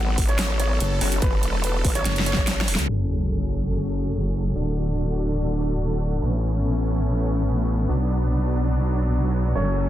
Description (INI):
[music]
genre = heavy wobble dubstep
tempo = 144 BPM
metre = 4/4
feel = half-time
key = F# minor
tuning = A4 = 444 Hz
[part]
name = dark grand piano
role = melody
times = 0.0-2.8, 9.6-9.9 s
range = B4 to F#5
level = -30 LUFS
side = right 1 dB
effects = tape echo
[part]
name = supersaw chords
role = sustained chords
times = 0.0-9.9 s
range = D3 to G#5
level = -28 LUFS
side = equal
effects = sidechain pumping, low-pass filter
[part]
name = vowel-sweep wobble bass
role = bass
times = 0.0-2.8 s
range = E1 to A1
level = -24 LUFS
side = equal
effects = chorus, overdrive
[part]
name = big-room dance drum kit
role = drums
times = 0.2-3.0 s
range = crash cymbal, handclaps, hi-hat, snare drum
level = -26 LUFS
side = equal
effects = low-pass filter on hats, low-pass filter on snare, low-pass filter on cymbals, low-pass filter on room
[part]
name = electronic kick drum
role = drums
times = 0.2-2.5 s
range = none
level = -24 LUFS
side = equal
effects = none
[part]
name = wobble bass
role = bass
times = 0.8-9.9 s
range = D1 to C#2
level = -23 LUFS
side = equal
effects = chorus, overdrive
[part]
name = orchestra-hit-like synth stab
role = stabs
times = 1.0-1.1 s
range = F#3 to F#4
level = -32 LUFS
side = left 6 dB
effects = built-in reverb, tape echo
[part]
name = sub drop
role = sound effects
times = 2.9-4.6 s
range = none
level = -28 LUFS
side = equal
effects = none
[sound]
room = light reverb, digital ambience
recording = dense, heavily limited modern master, low-pass filter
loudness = -20 LUFS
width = side -12 dB against mid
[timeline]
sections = 0.0-2.9 A section; 2.9-9.9 B section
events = drop 0.0-2.9; drum fill 2.1-2.9; band accent 2.7; impact 2.9-4.6; filter sweep 2.9-9.9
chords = 0.0 F#5; 2.9 F#madd9; 4.6 D; 6.2 Aadd9; 7.9 Bm